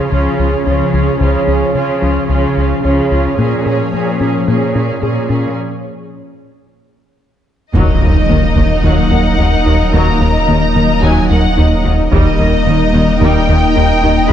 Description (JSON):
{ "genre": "cinematic, hybrid orchestral and electronic film score", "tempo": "110 BPM", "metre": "4/4", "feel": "straight", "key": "Eb minor", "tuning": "A4 = 439 Hz", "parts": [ { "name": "rich symphonic viola section", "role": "accompaniment", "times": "0.0-14.3 s", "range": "Eb3 to Ab4", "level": "-20 LUFS", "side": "right 2 dB", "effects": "none" }, { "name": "hollow soft pad", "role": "sustained chords", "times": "0.0-14.3 s", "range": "F3 to Eb5", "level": "-18 LUFS", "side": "equal", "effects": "ensemble chorus" }, { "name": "rich symphonic cello section", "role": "bass", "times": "0.0-14.3 s", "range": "Eb2 to Db3", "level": "-19 LUFS", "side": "right 2 dB", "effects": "none" }, { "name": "thumb-piano-like synth pluck", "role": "arpeggios", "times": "0.1-14.2 s", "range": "Db3 to Ab4", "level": "-21 LUFS", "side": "left 3 dB", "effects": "chorus, tape echo" }, { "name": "rubbery square bass", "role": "riff", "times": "0.1-14.2 s", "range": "Db2 to Bb3", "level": "-16 LUFS", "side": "left 1 dB", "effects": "none" }, { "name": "rich symphonic violin section", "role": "melody", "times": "7.7-14.3 s", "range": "Eb5 to Bb5", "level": "-19 LUFS", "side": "left 2 dB", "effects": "none" }, { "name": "taiko ensemble", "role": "drums", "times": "7.7-8.8, 12.1-14.3 s", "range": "none", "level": "-17 LUFS", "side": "equal", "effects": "none" }, { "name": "warm symphonic violin section", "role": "second line", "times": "7.8-14.3 s", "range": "Bb4 to Eb5", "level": "-22 LUFS", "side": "left 2 dB", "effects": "none" }, { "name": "saturated sub bass", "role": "bass", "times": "7.8-14.3 s", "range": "Eb1", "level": "-17 LUFS", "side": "equal", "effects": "none" }, { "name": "impact", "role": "sound effects", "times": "7.8-9.9 s", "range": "none", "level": "-19 LUFS", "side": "equal", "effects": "none" } ], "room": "moderate scoring stage reverb, RT60 1.9 s", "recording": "dark, warm production, nothing above 10.9 kHz", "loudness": "-10 LUFS", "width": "side -10 dB against mid", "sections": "0.0-7.8 A section; 7.8-14.3 B section", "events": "build-up 0.0-7.8; break 5.6-7.8; impact 7.8-9.9", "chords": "0.0 Db; 3.4 Bbm7; 7.8 Ebm; 12.1 Eb" }